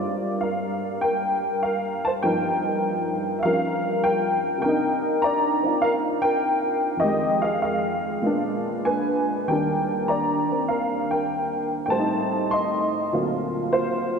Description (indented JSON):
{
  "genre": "solo jazz",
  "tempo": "100 BPM",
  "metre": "4/4",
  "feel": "swing 69% on 8ths, rubato",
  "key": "G minor",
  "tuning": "A4 = 440 Hz",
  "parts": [
    { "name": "honky-tonk upright piano", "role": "solo", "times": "0.0-14.2 s", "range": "D2 to C6", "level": "-21 LUFS", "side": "equal", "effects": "none" }
  ],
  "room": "wet cathedral reverb, RT60 5.3 s",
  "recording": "recorded in a church or concert hall",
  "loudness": "-21 LUFS",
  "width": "side -6 dB against mid",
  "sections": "0.0-14.2 A section",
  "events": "none",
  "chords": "0.0 Gm7; 2.2 G7alt; 4.6 Cm9; 7.0 Fm9; 8.2 Bb7b9; 9.5 Ebmaj7; 11.9 Am7b5; 13.1 D7alt",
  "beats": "0.42 1.03 1.64 | 2.24 2.85 3.45 4.04 | 4.64 5.23 5.83 6.42 | 7.02 7.63 8.24 8.87 | 9.50 10.11 10.71 11.32 | 11.93 12.54 13.14 13.73"
}